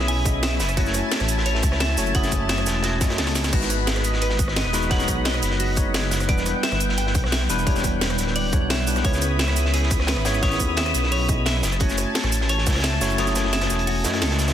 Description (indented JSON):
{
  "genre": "liquid drum and bass",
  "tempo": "174 BPM",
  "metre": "4/4",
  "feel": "straight",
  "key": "unclear",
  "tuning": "A4 = 440 Hz",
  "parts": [
    { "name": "tine electric piano", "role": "accompaniment", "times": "0.0-14.5 s", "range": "G3 to D#6", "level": "-27 LUFS", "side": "left 1 dB", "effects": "medium stereo tremolo, digital delay" },
    { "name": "lush unison pad", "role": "sustained chords", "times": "0.0-14.5 s", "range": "E4 to D#6", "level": "-29 LUFS", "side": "left 1 dB", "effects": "chorus" },
    { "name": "dark detuned saw bass", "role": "bass", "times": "0.0-14.5 s", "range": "D1 to F#2", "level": "-24 LUFS", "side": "equal", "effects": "none" },
    { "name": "crunchy breakbeat drum kit", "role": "drums", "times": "0.0-14.5 s", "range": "hi-hat, snare drum", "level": "-30 LUFS", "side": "equal", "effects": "high-pass filter on hats, high-pass filter on snare, high-pass filter on room" },
    { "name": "clean electric guitar", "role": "arpeggios", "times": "0.1-14.4 s", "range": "F#4 to G#5", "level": "-30 LUFS", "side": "right 1 dB", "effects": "digital delay" },
    { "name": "drum and bass drum kit", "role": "drums", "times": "0.1-14.5 s", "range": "cabasa, crash cymbal, hi-hat, rim click, snare drum", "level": "-27 LUFS", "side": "right 1 dB", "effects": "overdrive" },
    { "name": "electronic kick drum", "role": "drums", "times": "0.3-12.7 s", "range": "none", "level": "-23 LUFS", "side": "equal", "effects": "overdrive" }
  ],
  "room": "light reverb",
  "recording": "dense, heavily limited modern master",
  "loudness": "-19 LUFS",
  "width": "side -10 dB against mid",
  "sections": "0.0-14.5 A section",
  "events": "drum fill 3.0-3.5; kick drops out 13.2-14.5",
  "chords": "0.0 C#m7; 0.6 F#m7; 3.5 G#m7; 6.3 Em7; 9.0 C#m7; 11.6 F#m7"
}